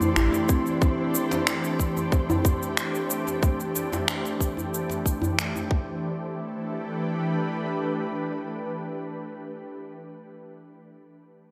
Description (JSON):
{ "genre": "organic downtempo", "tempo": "92 BPM", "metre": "4/4", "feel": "straight", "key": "A minor", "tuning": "A4 = 440 Hz", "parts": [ { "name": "ethereal airy pad", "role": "sustained chords", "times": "0.0-9.4 s", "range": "E3 to B4", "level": "-32 LUFS", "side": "equal", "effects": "ensemble chorus, built-in reverb, sidechain pumping" }, { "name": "electronic shaker and finger snaps", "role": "drums", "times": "0.0-5.7 s", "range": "none", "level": "-31 LUFS", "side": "equal", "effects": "none" }, { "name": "djembe", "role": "percussion", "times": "0.0-5.7 s", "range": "none", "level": "-32 LUFS", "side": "equal", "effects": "none" }, { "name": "wind-like tuned noise texture", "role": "texture", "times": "0.0-6.1 s", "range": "C4 to C5", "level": "-39 LUFS", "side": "equal", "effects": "built-in reverb" }, { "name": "kalimba", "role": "arpeggios", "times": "0.2-0.7 s", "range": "C4 to E4", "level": "-32 LUFS", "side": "equal", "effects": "delay" }, { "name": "electronic kick drum", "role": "drums", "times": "0.5-5.8 s", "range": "none", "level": "-26 LUFS", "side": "equal", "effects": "none" } ], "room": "moderate echo chamber reverb, RT60 2.2 s", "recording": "none", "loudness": "-27 LUFS", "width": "mono", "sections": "0.0-6.0 A section; 6.0-8.6 B section", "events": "none", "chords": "0.0 Am7; 5.7 Am; 6.0 A5" }